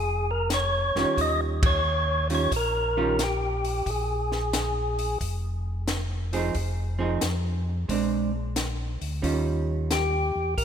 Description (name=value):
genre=soul jazz organ trio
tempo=89 BPM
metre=4/4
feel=swing 67% on 8ths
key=unclear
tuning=A4 = 440 Hz
part: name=percussive tonewheel organ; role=melody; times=0.0-5.2, 9.9-10.6 s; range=G4 to Eb5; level=-26 LUFS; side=left 1 dB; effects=slow rotary speaker
part: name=mellow tonewheel organ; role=bass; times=0.0-10.6 s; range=F1 to F2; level=-28 LUFS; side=equal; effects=chorus vibrato, slow rotary speaker
part: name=compact cocktail drum kit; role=drums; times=0.5-10.6 s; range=hi-hat, kick drum, ride cymbal, snare drum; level=-30 LUFS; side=left 1 dB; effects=none
part: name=vintage hollow-body jazz guitar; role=accompaniment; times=1.0-10.3 s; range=Eb3 to Ab4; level=-29 LUFS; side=right 5 dB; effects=none
room=light reverb, small room ambience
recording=rough home demo mix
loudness=-24 LUFS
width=side -8 dB against mid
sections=0.0-10.6 A section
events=band accent 1.5-1.8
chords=0.0 Bb5; 1.2 Eb9; 3.9 Bb5; 6.6 Fm7; 7.9 Bb9; 9.2 Eb9